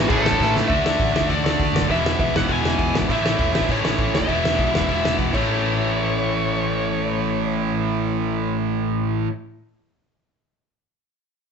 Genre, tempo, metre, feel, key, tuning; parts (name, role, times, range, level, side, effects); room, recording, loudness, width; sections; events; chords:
punk rock; 200 BPM; 4/4; straight; A major; A4 = 441 Hz
high-gain lead guitar; melody; 0.0-8.6 s; G#4 to G#5; -25 LUFS; left 1 dB; distortion
cranked stack guitar; riff; 0.0-9.3 s; A2 to F#4; -24 LUFS; left 8 dB; overdrive
distorted electric guitar; riff; 0.0-0.7 s; A2 to A3; -25 LUFS; right 1 dB; overdrive
tight distorted guitar; riff; 0.0-9.3 s; E2 to D4; -24 LUFS; right 9 dB; distortion
picked electric bass; bass; 0.0-9.3 s; E1 to F#2; -28 LUFS; equal
loose indie drum kit; drums; 0.1-5.4 s; crash cymbal, hi-hat, kick drum, snare drum; -24 LUFS; equal
light reverb; band playing live in one room, nothing above 8.0 kHz; -18 LUFS; side -6 dB against mid
0.7-5.5 A section; 5.5-7.9 B section
drum fill 0.4, 5.3
0.1 A; 0.7 D; 1.9 E; 3.1 A; 4.3 E; 5.3 A